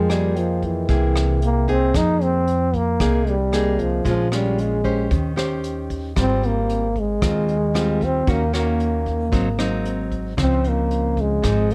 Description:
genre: bossa nova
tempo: 114 BPM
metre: 4/4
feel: straight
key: F minor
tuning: A4 = 440 Hz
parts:
  - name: breathy trombone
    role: melody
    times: 0.0-11.7 s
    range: E3 to Eb4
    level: -24 LUFS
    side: equal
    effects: none
  - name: nylon-string guitar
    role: accompaniment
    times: 0.0-11.7 s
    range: Ab2 to C5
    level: -26 LUFS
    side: equal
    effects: none
  - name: vibraphone with soft mallets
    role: accompaniment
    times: 0.0-2.0 s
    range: Ab4 to G5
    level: -32 LUFS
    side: equal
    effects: none
  - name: upright bass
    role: bass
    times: 0.0-11.7 s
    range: Ab1 to F2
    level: -26 LUFS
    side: equal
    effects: none
  - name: vintage brush drum kit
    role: drums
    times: 0.1-11.7 s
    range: hi-hat, kick drum, rim click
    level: -30 LUFS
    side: equal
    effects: none
room: light reverb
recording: dark, warm production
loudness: -21 LUFS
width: mono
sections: 0.0-1.9 A section; 1.9-11.7 A section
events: none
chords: 0.0 Fm11; 0.9 C7b13; 1.9 Fm11; 4.1 Bbm7; 5.1 Eb6; 6.2 Abmaj13; 8.3 Ebm7; 9.3 Ab7; 10.4 Dbmaj9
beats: 0.36 0.89 1.42 | 1.95 2.47 3.00 3.53 | 4.06 4.58 5.11 5.64 | 6.17 6.69 7.22 7.75 | 8.27 8.80 9.33 9.85 | 10.38 10.91 11.43

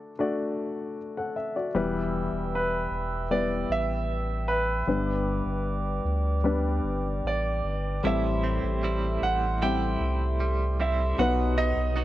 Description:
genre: pop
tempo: 77 BPM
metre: 4/4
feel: straight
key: unclear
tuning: A4 = 439 Hz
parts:
  - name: warm grand piano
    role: accompaniment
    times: 0.0-12.0 s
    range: G2 to F#5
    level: -30 LUFS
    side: left 4 dB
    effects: none
  - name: warm sub bass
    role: bass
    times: 1.7-12.0 s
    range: E1 to D2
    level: -29 LUFS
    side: equal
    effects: none
  - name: glass harmonica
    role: sustained chords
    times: 1.8-12.0 s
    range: G4 to E6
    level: -34 LUFS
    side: right 1 dB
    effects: none
  - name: clear concert grand piano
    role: melody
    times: 2.5-12.0 s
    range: B4 to G5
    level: -30 LUFS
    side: right 3 dB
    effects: none
  - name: direct-recorded clean electric guitar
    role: arpeggios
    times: 8.0-12.0 s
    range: A2 to F#4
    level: -34 LUFS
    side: right 5 dB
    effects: tremolo
room: light reverb, studio ambience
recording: worn, warbling old tape, cassette tape, warbly pitch drift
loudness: -25 LUFS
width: side -14 dB against mid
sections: 0.0-8.0 A section; 8.0-12.0 B section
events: none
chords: 0.0 D; 1.8 Em; 4.9 G; 8.0 Am7; 11.2 B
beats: 0.20 0.98 | 1.75 2.52 3.30 4.09 | 4.87 5.65 6.44 7.25 | 8.05 8.83 9.62 10.40 | 11.19 11.97

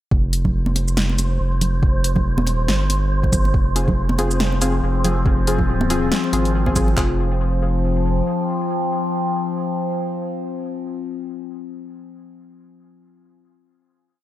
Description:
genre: deep dubstep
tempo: 140 BPM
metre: 4/4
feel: swing 57% on 16ths, half-time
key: F minor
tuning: A4 = 441 Hz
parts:
  - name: saturated sub bass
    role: bass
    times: 0.1-8.2 s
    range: F1 to Ab1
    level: -20 LUFS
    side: equal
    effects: none
  - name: deep house drum kit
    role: drums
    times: 0.1-7.1 s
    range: handclaps, kick drum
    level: -19 LUFS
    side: equal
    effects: overdrive
  - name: wind-like tuned noise texture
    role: texture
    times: 0.7-7.0 s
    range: C5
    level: -30 LUFS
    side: right 2 dB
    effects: built-in reverb, ensemble chorus
  - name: deep house drum kit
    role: drums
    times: 0.3-6.9 s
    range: hi-hat, shaker, snare drum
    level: -24 LUFS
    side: equal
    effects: overdrive
  - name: congas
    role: percussion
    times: 0.4-7.0 s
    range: none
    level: -27 LUFS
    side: right 2 dB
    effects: dub echo
  - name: overtone-sweeping drone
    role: sustained chords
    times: 4.4-11.0 s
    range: F3 to C4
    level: -23 LUFS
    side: left 3 dB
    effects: chorus, built-in reverb
  - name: filtered dub chord stab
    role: stabs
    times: 3.8-11.0 s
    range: C4 to Ab4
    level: -26 LUFS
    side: left 2 dB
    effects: chorus, dub echo
room: moderate lush hall reverb, RT60 2.2 s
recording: dreamy mix soaked in reverb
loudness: -17 LUFS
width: side -13 dB against mid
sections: 0.1-7.0 drop; 7.0-10.4 final chord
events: drop 0.1-7.0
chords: 0.1 Fm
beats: | 0.12 0.55 0.97 1.40 | 1.83 2.26 2.69 3.12 | 3.54 3.97 4.40 4.83 | 5.26 5.69 6.12 6.54 | 6.97 7.40 7.83 8.26 | 8.69 9.12 9.54 9.97

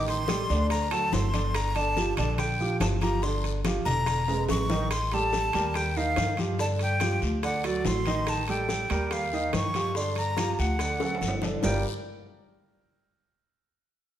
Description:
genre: Afro-Cuban jazz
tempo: 143 BPM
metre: 4/4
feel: straight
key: G minor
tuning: A4 = 440 Hz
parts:
  - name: breathy bright jazz flute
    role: melody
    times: 0.0-11.8 s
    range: D5 to C#6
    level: -30 LUFS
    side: left 1 dB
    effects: none
  - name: warm grand piano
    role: accompaniment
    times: 0.0-11.8 s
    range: D3 to Eb5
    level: -31 LUFS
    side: right 3 dB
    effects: none
  - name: upright bass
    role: bass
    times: 0.0-11.8 s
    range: E1 to G2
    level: -30 LUFS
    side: equal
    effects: none
  - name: bongos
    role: percussion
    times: 0.1-11.7 s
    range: none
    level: -38 LUFS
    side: left 6 dB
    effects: none
  - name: congas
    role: percussion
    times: 0.1-11.7 s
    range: none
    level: -36 LUFS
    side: left 4 dB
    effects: none
  - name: maracas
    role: percussion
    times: 0.1-11.7 s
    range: none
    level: -42 LUFS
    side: left 3 dB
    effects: none
  - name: timbales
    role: percussion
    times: 0.1-11.7 s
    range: none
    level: -38 LUFS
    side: right 4 dB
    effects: none
  - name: guiro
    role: percussion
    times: 0.3-11.7 s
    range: none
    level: -42 LUFS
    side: left 7 dB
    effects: none
room: moderate large studio reverb, RT60 1.4 s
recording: none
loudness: -24 LUFS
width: side -11 dB against mid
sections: 0.0-4.9 A section; 4.9-11.6 B section; 11.6-13.3 C section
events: drum fill 4.3-4.9, 11.0-11.6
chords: 0.0 Am7b5; 0.7 D7; 1.5 Gm9; 4.1 E7; 4.9 Am7b5; 5.8 Eb; 6.6 G5; 7.4 D7; 8.3 Gmadd9/A; 9.1 Eb7; 10.0 Gm7; 10.8 D; 11.6 Gm7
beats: 0.29 0.71 1.13 | 1.55 1.97 2.39 2.81 | 3.23 3.65 4.07 4.49 | 4.91 5.33 5.75 6.17 | 6.59 7.01 7.43 7.86 | 8.28 8.70 9.12 9.54 | 9.96 10.38 10.80 11.22 | 11.64

